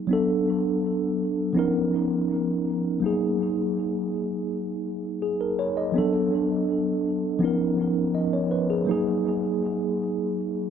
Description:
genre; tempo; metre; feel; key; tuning
reggae; 82 BPM; 4/4; straight; F# major; A4 = 441 Hz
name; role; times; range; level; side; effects
mellow tine electric piano; solo; 0.0-10.7 s; E#3 to D#5; -23 LUFS; equal; medium stereo tremolo, tape echo
room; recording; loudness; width
moderate echo chamber reverb, RT60 1.5 s; none; -23 LUFS; side -8 dB against mid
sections
0.0-10.7 A section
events
none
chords
0.1 D6; 1.6 C#13; 3.0 F#69; 6.0 D6; 7.4 C#13; 8.9 F#69

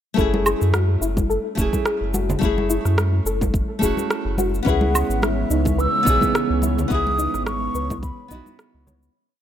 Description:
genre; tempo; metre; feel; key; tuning
sunset chillout; 107 BPM; 4/4; swing 56% on 16ths; F# dorian; A4 = 440 Hz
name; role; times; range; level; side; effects
nylon-string guitar; accompaniment; 0.1-9.1 s; A3 to G#4; -25 LUFS; moving between left 5 dB and right 5 dB; auto-pan, digital delay
soft round pluck; arpeggios; 0.2-9.1 s; D#4 to C#5; -27 LUFS; left 2 dB; ensemble chorus, digital delay
warm sub bass; bass; 0.2-9.1 s; E1 to F#2; -23 LUFS; equal; none
electronic kick drum; drums; 0.2-8.4 s; none; -24 LUFS; equal; none
electronic shaker, woodblock and rim click; drums; 0.2-9.1 s; none; -27 LUFS; right 1 dB; none
congas; percussion; 0.3-9.0 s; none; -30 LUFS; equal; none
mellow hollow concert flute; melody; 4.7-8.8 s; E5 to E6; -24 LUFS; equal; tape echo
soft string machine; sustained chords; 4.7-9.1 s; C#3 to C#5; -28 LUFS; right 2 dB; ensemble chorus
room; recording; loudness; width
small room ambience; none; -18 LUFS; side -10 dB against mid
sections
0.2-9.2 groove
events
fade-out 6.2-9.2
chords
0.2 F#m9; 4.7 C#m9

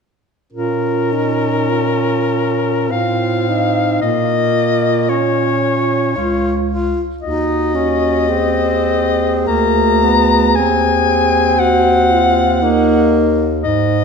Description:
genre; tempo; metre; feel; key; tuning
classical, lyrical piece for single-reed quartet; 47-59 BPM; 3/4; rubato; Bb minor; A4 = 437 Hz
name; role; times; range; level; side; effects
clear soprano saxophone; melody; 0.5-14.0 s; Bb4 to Bb5; -17 LUFS; left 6 dB; none
warm alto saxophone; second line; 0.5-13.6 s; Eb4 to Ab4; -20 LUFS; right 6 dB; none
warm tenor saxophone; accompaniment; 0.5-13.7 s; Bb3 to F4; -18 LUFS; left 3 dB; none
mellow bass clarinet; bass; 0.5-14.0 s; Db2 to Bb2; -20 LUFS; right 4 dB; none
room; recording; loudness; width
wet scoring stage reverb, RT60 1.7 s; minimal, uncompressed stereo recording; -13 LUFS; side -5 dB against mid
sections
0.5-14.0 A section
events
none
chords
0.5 Bbm; 2.9 F7/A; 4.0 Bbm; 7.2 Ebm; 9.5 Bb7/D; 10.6 Ebm

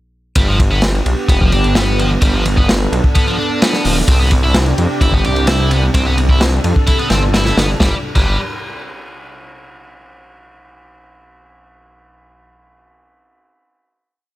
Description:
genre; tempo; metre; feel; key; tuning
breakbeat, breaks; 129 BPM; 4/4; straight; G mixolydian; A4 = 439 Hz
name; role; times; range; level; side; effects
lush unison pad; sustained chords; 0.9-8.0 s; C3 to A4; -22 LUFS; right 1 dB; chorus, sidechain pumping
high-gain distorted guitar; riff; 0.4-8.4 s; F3 to G4; -20 LUFS; equal; distortion, vintage 12-bit sampler grit, tape echo
detuned saw bass; bass; 0.4-8.4 s; D1 to F2; -16 LUFS; equal; tube saturation
crunchy breakbeat drum kit; drums; 0.4-8.2 s; crash cymbal, hi-hat, kick drum, ride cymbal, snare drum; -15 LUFS; equal; none
room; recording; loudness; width
studio ambience; faint mains hum; -12 LUFS; side -16 dB against mid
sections
0.4-7.8 drop; 7.8-9.7 final chord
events
drop 0.4-7.8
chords
0.4 G; 4.1 Csus2; 7.8 G

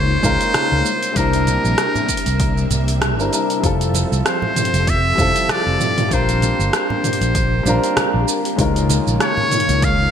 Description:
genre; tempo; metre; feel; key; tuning
sunset chillout; 97 BPM; 4/4; swing 56% on 16ths; F major; A4 = 441 Hz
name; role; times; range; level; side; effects
trumpet with metal mute; melody; 0.0-10.1 s; Bb4 to F5; -20 LUFS; equal; ping-pong delay
warm grand piano; accompaniment; 0.0-10.1 s; G3 to Bb4; -22 LUFS; moving between left 6 dB and right 1 dB; auto-pan, ping-pong delay
soft string machine; sustained chords; 0.0-10.1 s; C3 to E5; -25 LUFS; left 1 dB; ensemble chorus
fretless electric bass; bass; 0.0-10.1 s; F1 to Db2; -19 LUFS; equal; none
deep house drum kit; drums; 0.2-10.0 s; hi-hat, rim click, shaker, toms; -22 LUFS; right 1 dB; gated reverb
electronic kick drum; drums; 0.2-10.0 s; none; -23 LUFS; equal; overdrive
congas; percussion; 0.2-9.8 s; none; -28 LUFS; right 3 dB; none
room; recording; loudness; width
moderate plate reverb, RT60 1.5 s; bright 1980s-style digital production; -15 LUFS; side -8 dB against mid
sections
0.0-10.1 A section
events
none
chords
0.0 Db69; 0.9 C9; 3.6 Fmaj9; 6.1 Bb69; 8.6 Db69

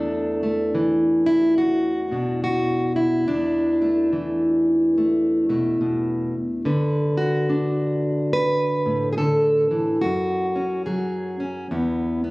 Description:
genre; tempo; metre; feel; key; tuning
folk, solo fingerstyle acoustic guitar; 71 BPM; 4/4; swing 62% on 8ths; E mixolydian; A4 = 441 Hz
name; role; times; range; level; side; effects
fingerpicked plugged-in steel-string acoustic guitar; solo; 0.0-12.3 s; E2 to B4; -19 LUFS; equal; none
room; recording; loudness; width
light reverb; recorded on a phone in the room, club reverb; -19 LUFS; side -22 dB against mid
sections
0.0-12.3 A section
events
none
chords
0.0 E7sus4; 6.7 D6; 10.0 F#sus2; 11.7 E5

